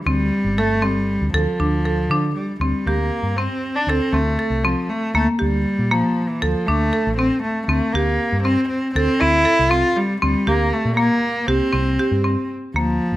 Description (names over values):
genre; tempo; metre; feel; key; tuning
contemporary instrumental, chamber music in an uneven meter; 236 BPM (eighths); 5/8; straight; unclear; A4 = 443 Hz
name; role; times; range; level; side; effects
warm cello; melody; 0.1-13.2 s; E3 to F4; -20 LUFS; equal; none
marimba with hard mallets; arpeggios; 0.1-13.1 s; Bb3 to A4; -22 LUFS; equal; none
woody fretless electric bass; bass; 0.1-13.2 s; G1 to D3; -22 LUFS; equal; none
room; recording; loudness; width
light reverb; close, detailed microphones; -17 LUFS; side -15 dB against mid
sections
0.0-2.6 A section; 2.6-12.8 B section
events
none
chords
0.1 Am7; 1.3 Dm; 2.6 C5/D; 3.9 F6; 5.1 Gm7/D; 6.4 D5; 7.7 C5/D; 9.0 C69; 10.2 Bb69/D; 11.5 C5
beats
| 0.07 0.33 0.58 0.83 1.09 | 1.34 1.59 1.85 2.10 2.36 | 2.61 2.86 3.12 3.37 3.62 | 3.88 4.13 4.39 4.64 4.89 | 5.15 5.40 5.65 5.91 6.16 | 6.42 6.67 6.92 7.18 7.43 | 7.68 7.94 8.19 8.44 8.70 | 8.95 9.21 9.46 9.71 9.97 | 10.22 10.47 10.73 10.98 11.23 | 11.49 11.74 12.00 12.25 12.50 | 12.76 13.01